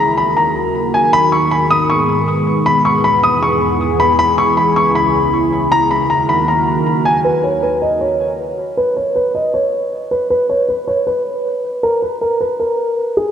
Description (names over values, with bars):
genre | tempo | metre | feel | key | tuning
hip hop | 157 BPM | 4/4 | half-time | unclear | A4 = 439 Hz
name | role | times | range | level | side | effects
dark grand piano | melody | 0.0-13.3 s | G#4 to D#6 | -14 LUFS | equal | low-pass filter, tape echo
deep dark ambient pad | sustained chords | 0.0-7.2 s | C#2 to A#4 | -17 LUFS | equal | chorus, built-in reverb
room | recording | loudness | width
wet lush hall reverb, RT60 3.2 s | dreamy mix soaked in reverb | -13 LUFS | side -8 dB against mid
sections
0.0-7.2 A section; 7.2-13.3 B section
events
filter sweep on grand piano 7.2-13.3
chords
0.0 D#m; 1.1 G#m; 2.7 E; 4.2 C#m; 5.7 D#m; 7.2 N.C.